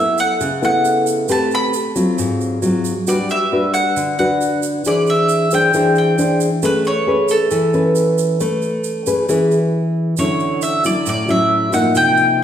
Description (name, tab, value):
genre	bossa nova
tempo	135 BPM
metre	4/4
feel	straight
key	A major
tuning	A4 = 439 Hz
part	mandolin	melody	0.0-12.4 s	A4 to B5	-18 LUFS	equal	none
part	nylon-string guitar	accompaniment	0.0-12.4 s	G#2 to B#4	-16 LUFS	left 1 dB	none
part	tube shaker	percussion	0.2-12.4 s	none	-29 LUFS	right 8 dB	none
room	wet recital hall reverb, RT60 1.6 s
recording	recorded in a church or concert hall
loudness	-14 LUFS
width	side -9 dB against mid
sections	0.0-10.2 A section; 10.2-12.4 B section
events	stop 9.7-10.2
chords	0.0 F#m7; 1.3 Am9; 2.2 G#6; 3.1 Gmaj7; 4.8 E7alt; 6.6 Amaj9; 10.2 Dmaj9